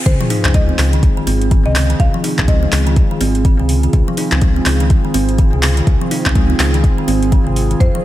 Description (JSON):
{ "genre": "afro house", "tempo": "124 BPM", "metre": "4/4", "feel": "swing 60% on 16ths", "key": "unclear", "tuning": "A4 = 437 Hz", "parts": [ { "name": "warm analog pad", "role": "sustained chords", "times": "0.0-8.0 s", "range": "Eb3 to Ab4", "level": "-23 LUFS", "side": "right 2 dB", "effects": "chorus, sidechain pumping" }, { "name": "riser and sub drop", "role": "sound effects", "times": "0.0-2.0 s", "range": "none", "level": "-22 LUFS", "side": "equal", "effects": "none" }, { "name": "buzzing marimba with medium mallets", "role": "melody", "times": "0.1-3.2, 7.8-8.0 s", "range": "C5 to F5", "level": "-25 LUFS", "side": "left 1 dB", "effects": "analog delay" }, { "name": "round analog bass", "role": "bass", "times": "0.1-7.9 s", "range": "Ab1 to F2", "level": "-16 LUFS", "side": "equal", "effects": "tube saturation, sidechain pumping" }, { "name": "deep house drum kit", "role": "drums", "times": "0.1-7.9 s", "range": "handclaps, hi-hat", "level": "-21 LUFS", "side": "equal", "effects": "high-pass filter on hats, high-pass filter on snare" }, { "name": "electronic kick drum", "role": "drums", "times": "0.1-7.9 s", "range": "none", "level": "-13 LUFS", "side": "equal", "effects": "none" }, { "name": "kalimba", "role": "arpeggios", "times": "0.2-8.0 s", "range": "C3 to Eb4", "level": "-19 LUFS", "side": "equal", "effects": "sidechain pumping, analog delay" } ], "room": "light reverb", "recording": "none", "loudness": "-12 LUFS", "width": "side -14 dB against mid", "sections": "0.1-8.0 A section", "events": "drop 0.1-8.0; impact 0.1-2.0", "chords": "0.1 Dbmaj7", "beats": "| 0.06 0.55 1.03 1.51 | 2.00 2.48 2.97 3.45 | 3.93 4.42 4.90 5.38 | 5.87 6.35 6.84 7.32 | 7.80" }